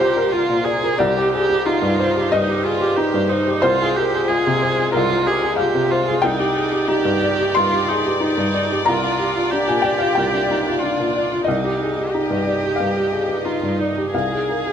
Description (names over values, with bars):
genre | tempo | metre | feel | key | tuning
neoclassical piano and strings | 92 BPM | 4/4 | rubato | C minor | A4 = 440 Hz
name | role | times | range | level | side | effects
felt-muted upright piano | accompaniment | 0.0-14.7 s | C2 to C6 | -18 LUFS | left 1 dB | none
rich viola | accompaniment | 0.0-14.7 s | Eb4 to Ab4 | -22 LUFS | right 4 dB | none
rich symphonic string section | sustained chords | 0.0-14.7 s | Ab3 to F5 | -27 LUFS | left 2 dB | none
room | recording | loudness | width
light reverb | none | -16 LUFS | side -8 dB against mid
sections
0.0-14.7 A section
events
none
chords
0.0 Bb/C; 1.0 Cmadd9; 3.6 Ab6/C; 6.2 Cmadd9; 8.9 Bb/C; 11.5 Cmadd9; 14.1 Ab6/C